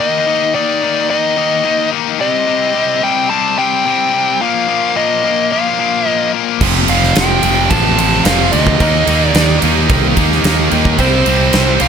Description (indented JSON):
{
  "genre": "hard rock",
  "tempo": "109 BPM",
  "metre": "4/4",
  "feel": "straight",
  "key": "unclear",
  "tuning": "A4 = 441 Hz",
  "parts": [
    { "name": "nasal lead guitar with a parked wah", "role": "melody", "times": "0.0-11.9 s", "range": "C5 to A5", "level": "-16 LUFS", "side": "equal", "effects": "overdrive" },
    { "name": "distorted electric guitar", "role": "riff", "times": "0.0-11.9 s", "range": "F2 to Eb4", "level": "-16 LUFS", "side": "left 13 dB", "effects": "overdrive" },
    { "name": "high-gain distorted guitar", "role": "riff", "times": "6.6-11.9 s", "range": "F2 to Eb4", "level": "-21 LUFS", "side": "right 4 dB", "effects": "none" },
    { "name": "scooped high-gain guitar", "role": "riff", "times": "6.6-11.9 s", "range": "F2 to Eb4", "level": "-17 LUFS", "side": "right 17 dB", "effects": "distortion" },
    { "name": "growling fingered electric bass", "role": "bass", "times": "6.6-11.9 s", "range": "F1 to Eb2", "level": "-16 LUFS", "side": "right 1 dB", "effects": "overdrive" },
    { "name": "huge arena drum kit", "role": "drums", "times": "6.6-11.9 s", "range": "crash cymbal, kick drum, ride cymbal, snare drum", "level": "-16 LUFS", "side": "right 2 dB", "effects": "none" }
  ],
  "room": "light reverb",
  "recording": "none",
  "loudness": "-11 LUFS",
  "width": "side -7 dB against mid",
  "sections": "0.0-11.9 A section",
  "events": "none",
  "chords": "0.0 Eb5; 2.2 Cm; 4.4 Bb5; 6.6 F; 8.8 Eb; 11.0 Cm"
}